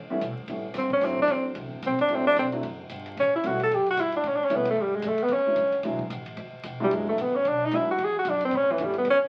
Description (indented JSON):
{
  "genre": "jazz, small-group swing and bop",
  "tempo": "224 BPM",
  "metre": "4/4",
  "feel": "swing 59% on 8ths",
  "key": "A mixolydian",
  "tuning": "A4 = 441 Hz",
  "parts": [
    { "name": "upright bass", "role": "bass", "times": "0.0-9.2 s", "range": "E1 to B2", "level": "-42 LUFS", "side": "equal", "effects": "none" },
    { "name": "warm grand piano", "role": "accompaniment", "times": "0.1-8.9 s", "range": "F#3 to E4", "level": "-34 LUFS", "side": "equal", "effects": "none" },
    { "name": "compact cocktail drum kit", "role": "drums", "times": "0.2-9.1 s", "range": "hi-hat, kick drum, ride cymbal, snare drum", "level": "-43 LUFS", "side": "equal", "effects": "none" },
    { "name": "warm tenor saxophone", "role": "melody", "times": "0.8-9.2 s", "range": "E3 to A4", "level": "-25 LUFS", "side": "equal", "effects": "none" }
  ],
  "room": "wet club reverb, RT60 0.6 s",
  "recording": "very old 78 rpm record, vinyl crackle",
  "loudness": "-26 LUFS",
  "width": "mono",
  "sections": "0.0-9.3 A section",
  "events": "none",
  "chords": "0.0 A9; 1.0 D9; 3.2 A9; 5.3 E9; 8.5 A9"
}